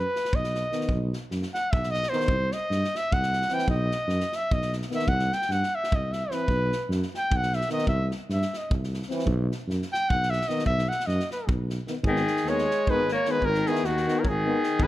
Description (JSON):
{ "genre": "balkan folk, Balkan brass band", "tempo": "301 BPM (eighths)", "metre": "7/8", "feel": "straight", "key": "unclear", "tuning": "A4 = 439 Hz", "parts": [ { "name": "warm cornet", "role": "melody", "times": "0.0-14.9 s", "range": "F#4 to G5", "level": "-27 LUFS", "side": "equal", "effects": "none" }, { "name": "dark tuba", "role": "bass", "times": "0.0-14.9 s", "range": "G#1 to G2", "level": "-29 LUFS", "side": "equal", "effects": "none" }, { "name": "natural country drum kit", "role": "percussion", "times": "0.2-14.9 s", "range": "kick drum, snare drum", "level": "-31 LUFS", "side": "equal", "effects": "none" }, { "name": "clear trombone", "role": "accompaniment", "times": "0.7-14.9 s", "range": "D#3 to E3", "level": "-35 LUFS", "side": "right 3 dB", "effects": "none" }, { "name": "dark euphonium", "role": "accompaniment", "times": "0.7-14.9 s", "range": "B3 to C4", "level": "-34 LUFS", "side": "left 5 dB", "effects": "none" }, { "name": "breathy alto saxophone", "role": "second line", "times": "12.1-14.9 s", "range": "D#3 to A#3", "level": "-28 LUFS", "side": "left 4 dB", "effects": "none" } ], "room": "light reverb", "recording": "dark, warm production", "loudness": "-24 LUFS", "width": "side -15 dB against mid", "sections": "0.0-12.0 A section; 12.0-14.9 B section", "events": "cornet solo 0.0-12.0", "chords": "0.0 B; 2.3 N.C.; 3.7 B; 5.1 C; 6.5 N.C.; 7.9 C; 9.3 N.C.; 12.0 G#m", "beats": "0.10 0.30 0.50 0.70 | 0.90 1.09 1.29 1.49 1.69 1.89 2.09 | 2.29 2.49 2.69 2.89 3.09 3.29 3.49 | 3.69 3.89 4.09 4.29 4.49 4.69 4.89 | 5.09 5.29 5.49 5.69 5.89 6.09 6.29 | 6.49 6.69 6.89 7.08 7.28 7.48 7.68 | 7.88 8.08 8.28 8.48 8.68 8.88 9.07 | 9.27 9.47 9.67 9.87 10.06 10.26 10.46 | 10.66 10.85 11.05 11.25 11.45 11.64 11.84 | 12.04 12.23 12.43 12.63 12.83 13.02 13.22 | 13.42 13.61 13.81 14.01 14.20 14.40 14.60 | 14.79" }